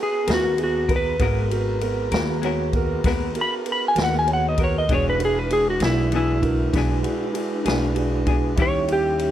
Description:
slow blues; 65 BPM (dotted quarters); 12/8; straight; G# minor; A4 = 440 Hz
clean lap steel guitar; melody; 0.0-9.3 s; E4 to B5; -23 LUFS; equal
clear concert grand piano; accompaniment; 0.0-9.3 s; B3 to C#5; -28 LUFS; right 5 dB
mellow tonewheel organ; sustained chords; 0.0-9.3 s; G3 to A#5; -29 LUFS; equal; slow rotary speaker
clean electric guitar; accompaniment; 0.3-8.8 s; D#3 to A#4; -29 LUFS; left 8 dB; tremolo
upright bass; bass; 0.3-9.3 s; E1 to D#2; -25 LUFS; equal
vintage drum kit; drums; 0.3-9.3 s; kick drum, ride cymbal, snare drum; -26 LUFS; equal
little or no reverb; -19 LUFS; side -11 dB against mid
0.0-9.3 A section
electric slide guitar solo 0.0-9.3
0.0 G#m9; 4.9 E7; 8.6 D#7b9
0.28 | 1.20 2.12 3.05 3.97 | 4.89 5.82 6.74 7.67 | 8.59

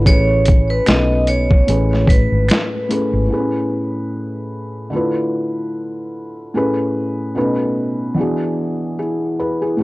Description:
lo-fi hip hop; 74 BPM; 4/4; swing 56% on 16ths; A major; A4 = 440 Hz
vibraphone with hard mallets; melody; 0.0-3.3 s; B4 to D#5; -20 LUFS; right 1 dB
felt-muted upright piano; accompaniment; 0.0-9.8 s; A2 to B4; -19 LUFS; equal; cassette tape
vintage muted fingered electric bass; bass; 0.0-3.3 s; G#1 to B1; -17 LUFS; equal
boom bap sampler-style drum kit; drums; 0.1-3.1 s; hi-hat, kick drum, snare drum; -14 LUFS; equal; overdrive, vintage 12-bit sampler grit
finger snaps; percussion; 0.9-2.7 s; -26 LUFS; right 1 dB
light reverb, small room ambience; dry, gritty hardware recording, cassette tape; -15 LUFS; side -20 dB against mid
0.0-3.3 A section; 3.3-9.8 B section
0.1 Amaj9; 0.9 B7; 1.7 Amaj9; 4.9 Dm6; 6.5 Amaj9; 7.4 B7; 8.2 E7
| 0.06 0.87 1.68 2.49 | 3.30 4.11 4.92 5.74 | 6.55 7.36 8.17 8.98 | 9.79

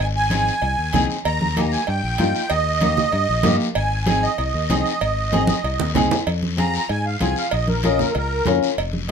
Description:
latin, cumbia; 191 BPM; 4/4; straight; A4 = 439 Hz
musette accordion; melody; 0.0-8.5 s; A4 to Bb5; -23 LUFS; right 3 dB
fingered electric bass; bass; 0.0-9.1 s; F1 to Ab2; -24 LUFS; left 1 dB
guiro; percussion; 0.0-9.1 s; -31 LUFS; left 8 dB
flamenco guitar; accompaniment; 0.3-9.1 s; Bb3 to Bb4; -22 LUFS; left 3 dB
congas; percussion; 0.3-9.1 s; -24 LUFS; right 2 dB
cowbell and timbales; percussion; 0.3-9.1 s; -28 LUFS; right 4 dB
moderate studio reverb, RT60 0.5 s; minimal, uncompressed stereo recording; -18 LUFS; side -6 dB against mid
0.0-6.3 A section; 6.3-9.1 B section
drum fill 5.3-6.3; accordion solo 6.3-9.1
0.0 Ab; 1.2 Eb; 3.8 Ab; 6.3 Fm; 7.5 Bbm
0.30 0.62 0.93 | 1.25 1.56 1.87 2.19 | 2.50 2.81 3.13 3.44 | 3.76 4.07 4.38 4.70 | 5.01 5.33 5.64 5.96 | 6.27 6.58 6.90 7.21 | 7.53 7.84 8.15 8.47 | 8.78 9.09

